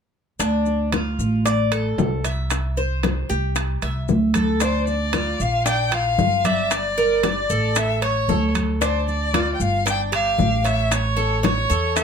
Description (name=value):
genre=latin, Cuban son and guajira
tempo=114 BPM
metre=4/4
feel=straight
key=D minor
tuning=A4 = 440 Hz
part: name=Cuban tres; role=arpeggios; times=0.4-12.0 s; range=D4 to E5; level=-25 LUFS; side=left 1 dB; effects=none
part: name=upright bass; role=bass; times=0.4-12.0 s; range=G1 to E2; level=-23 LUFS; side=right 1 dB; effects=none
part: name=bongos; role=percussion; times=0.4-12.0 s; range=none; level=-28 LUFS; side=left 6 dB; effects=none
part: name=congas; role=percussion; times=0.4-12.0 s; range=none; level=-28 LUFS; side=left 4 dB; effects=none
part: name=maracas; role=percussion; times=0.4-12.0 s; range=none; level=-32 LUFS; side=left 7 dB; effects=none
part: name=timbales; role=percussion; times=0.4-12.0 s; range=none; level=-28 LUFS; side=right 6 dB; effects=none
part: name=rich violin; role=melody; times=4.6-12.0 s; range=C5 to G5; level=-22 LUFS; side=left 1 dB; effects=slapback echo
room=light reverb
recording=close, detailed microphones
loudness=-18 LUFS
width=side -7 dB against mid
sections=0.4-4.6 A section; 4.6-12.0 B section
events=none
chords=0.4 Dm; 2.5 C; 4.6 Dm; 5.7 Bb; 6.7 Gm; 7.8 A; 8.8 Dm; 9.9 G5; 10.9 A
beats=| 0.40 0.93 1.45 1.98 | 2.51 3.03 3.56 4.09 | 4.61 5.14 5.66 6.19 | 6.71 7.24 7.76 8.29 | 8.82 9.34 9.87 10.39 | 10.92 11.44 11.97